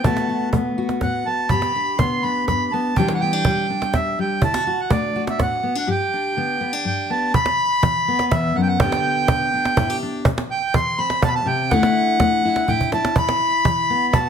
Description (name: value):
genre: acoustic folk duo or small band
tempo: 123 BPM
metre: 3/4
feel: straight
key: G major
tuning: A4 = 439 Hz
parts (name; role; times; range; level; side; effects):
- accordion; melody; 0.0-14.3 s; D5 to C6; -20 LUFS; right 2 dB; none
- fingerpicked steel-string acoustic guitar; accompaniment; 0.0-14.3 s; E2 to G4; -23 LUFS; left 4 dB; none
- cajon; percussion; 0.0-14.2 s; none; -22 LUFS; right 2 dB; none
room: moderate large studio reverb, RT60 1.1 s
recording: none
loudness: -17 LUFS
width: side -7 dB against mid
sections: 0.0-7.3 A section; 7.3-14.3 B section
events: drum fill 12.7-13.2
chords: 0.0 D6; 1.5 G; 3.0 Em7; 4.4 D; 5.9 G; 7.3 Esus2; 8.8 G; 10.3 C; 11.7 Dadd9; 13.2 Esus2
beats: | 0.04 0.53 1.01 | 1.50 1.99 2.47 | 2.96 3.45 3.94 | 4.42 4.91 5.39 | 5.88 6.37 6.85 | 7.34 7.83 8.31 | 8.80 9.28 9.77 | 10.26 10.74 11.23 | 11.71 12.20 12.68 | 13.17 13.65 14.14